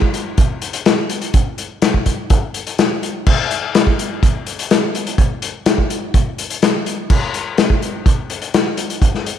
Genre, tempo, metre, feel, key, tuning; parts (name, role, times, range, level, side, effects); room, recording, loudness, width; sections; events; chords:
rock; 125 BPM; 4/4; straight
vintage drum kit; drums; 0.0-9.4 s; crash cymbal, hi-hat, kick drum, snare drum; -15 LUFS; left 1 dB
moderate echo chamber reverb, RT60 1.8 s; 1960s-style stereo; -15 LUFS; side -9 dB against mid
0.0-9.4 A section